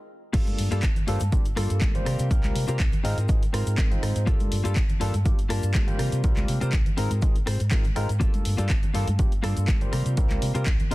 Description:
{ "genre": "filtered disco house", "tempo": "122 BPM", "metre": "4/4", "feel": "swing 53% on 16ths", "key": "G phrygian", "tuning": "A4 = 439 Hz", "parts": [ { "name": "barky tine electric piano", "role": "accompaniment", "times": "0.3-10.9 s", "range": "G3 to A5", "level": "-33 LUFS", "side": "equal", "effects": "phaser, sidechain pumping, low-pass filter" }, { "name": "direct-recorded clean electric guitar", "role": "riff", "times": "0.3-10.9 s", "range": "Bb3 to C5", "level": "-34 LUFS", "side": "left 4 dB", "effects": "sidechain pumping, low-pass filter" }, { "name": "fingered electric bass", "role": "bass", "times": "0.3-10.9 s", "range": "G1 to C3", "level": "-26 LUFS", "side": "equal", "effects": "tube saturation, sidechain pumping, low-pass filter" }, { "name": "electronic kick drum", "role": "drums", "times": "0.3-10.8 s", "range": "none", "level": "-23 LUFS", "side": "equal", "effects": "none" }, { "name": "punchy analog drum machine", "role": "drums", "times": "0.3-10.9 s", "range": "crash cymbal, handclaps, hi-hat, rim click", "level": "-34 LUFS", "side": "equal", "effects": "sidechain pumping on hats, sidechain pumping on cymbals" }, { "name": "maracas and congas", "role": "percussion", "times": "0.3-10.9 s", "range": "none", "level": "-37 LUFS", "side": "right 2 dB", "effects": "sidechain pumping on perc, low-pass filter on perc" } ], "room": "digital ambience", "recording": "dense, heavily limited modern master", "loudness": "-22 LUFS", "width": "side -19 dB against mid", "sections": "0.3-10.9 A section", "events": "stop 0.0-0.3; drop 0.3-10.9", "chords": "0.3 Gm9; 2.1 C7sus4; 3.0 Ab69; 4.3 Gm9; 6.0 C7sus4; 7.0 Ab69; 8.2 Gm9; 9.9 C7sus4", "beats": "| 0.34 0.83 1.32 1.81 | 2.31 2.80 3.29 3.78 | 4.27 4.76 5.26 5.75 | 6.24 6.73 7.22 7.72 | 8.21 8.70 9.19 9.68 | 10.18 10.67" }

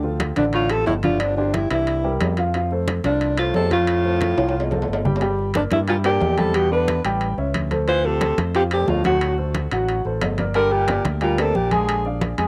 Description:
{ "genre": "Afro-Cuban jazz", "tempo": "180 BPM", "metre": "4/4", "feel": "straight", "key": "unclear", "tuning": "A4 = 440 Hz", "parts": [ { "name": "warm baby grand piano", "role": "accompaniment", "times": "0.0-12.5 s", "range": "D3 to Ab5", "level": "-27 LUFS", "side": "equal", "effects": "none" }, { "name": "modern bright fingered electric bass", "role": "bass", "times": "0.0-12.5 s", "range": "G1 to G2", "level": "-27 LUFS", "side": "equal", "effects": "none" }, { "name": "congas", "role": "percussion", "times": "0.0-12.4 s", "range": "none", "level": "-29 LUFS", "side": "equal", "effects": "none" }, { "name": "timbales", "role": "percussion", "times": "0.2-12.5 s", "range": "none", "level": "-31 LUFS", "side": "equal", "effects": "none" }, { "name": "warm alto saxophone", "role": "melody", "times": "0.4-12.1 s", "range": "D4 to C5", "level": "-24 LUFS", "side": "equal", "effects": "cassette tape, tape echo" }, { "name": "warm baritone saxophone", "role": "second line", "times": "0.4-12.1 s", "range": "F2 to E3", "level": "-31 LUFS", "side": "equal", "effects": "none" } ], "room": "wet booth ambience, RT60 0.2 s", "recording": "home recording on cassette", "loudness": "-21 LUFS", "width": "mono", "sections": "0.0-5.2 A section; 5.2-12.5 B section", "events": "drum fill 4.4-5.2", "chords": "0.0 Dm; 1.2 G5; 1.9 C7; 2.5 Fadd9; 5.2 Gm; 6.5 Em7; 7.2 A7; 7.9 Dm7; 9.2 D7; 10.6 Gm; 11.9 Bb7", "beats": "0.20 0.54 0.87 | 1.21 1.54 1.87 2.21 | 2.54 2.88 3.21 3.54 | 3.88 4.21 4.55 4.88 | 5.21 5.55 5.88 6.21 | 6.55 6.88 7.22 7.55 | 7.88 8.22 8.55 8.88 | 9.22 9.55 9.88 10.22 | 10.55 10.88 11.22 11.55 | 11.88 12.22" }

